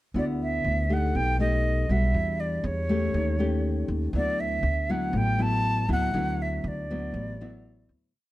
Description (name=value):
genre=bossa nova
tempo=120 BPM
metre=4/4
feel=straight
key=D major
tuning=A4 = 440 Hz
part: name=nylon-string guitar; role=accompaniment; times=0.1-8.1 s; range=A2 to G4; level=-28 LUFS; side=left 2 dB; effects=none
part: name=upright bass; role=bass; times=0.1-8.1 s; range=A1 to E2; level=-28 LUFS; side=equal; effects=none
part: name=jazz flute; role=melody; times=0.2-7.9 s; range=C#5 to A5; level=-29 LUFS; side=right 1 dB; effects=plate reverb
room=light reverb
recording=dark, warm production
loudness=-24 LUFS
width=side -16 dB against mid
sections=0.1-8.1 A section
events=fade-out 6.1-8.1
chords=0.1 D69; 1.1 B7alt; 2.1 Em9; 3.1 Eb7#11; 4.1 D69